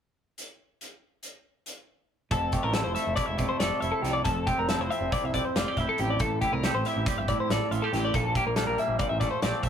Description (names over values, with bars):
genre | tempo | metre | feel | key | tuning
math rock and midwest emo | 278 BPM (eighths) | 9/8 | straight | F major | A4 = 438 Hz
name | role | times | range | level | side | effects
loose indie drum kit | drums | 0.4-9.7 s | hi-hat, kick drum, snare drum | -31 LUFS | equal | none
twangy electric guitar | accompaniment | 2.3-9.7 s | F2 to A4 | -31 LUFS | right 4 dB | spring reverb
twelve-string electric guitar | arpeggios | 2.3-9.7 s | G4 to E5 | -29 LUFS | left 4 dB | vibrato effect
growling picked electric bass | bass | 2.3-9.7 s | E1 to C2 | -32 LUFS | right 1 dB | overdrive
room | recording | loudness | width
light reverb | rough rehearsal-room recording | -24 LUFS | side -8 dB against mid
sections
0.4-2.3 A section; 2.3-9.7 B section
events
none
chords
0.4 N.C.; 2.3 Fmaj7; 4.3 Dm11/F; 6.2 Am7; 8.1 Gm/Bb; 9.0 Bbmaj13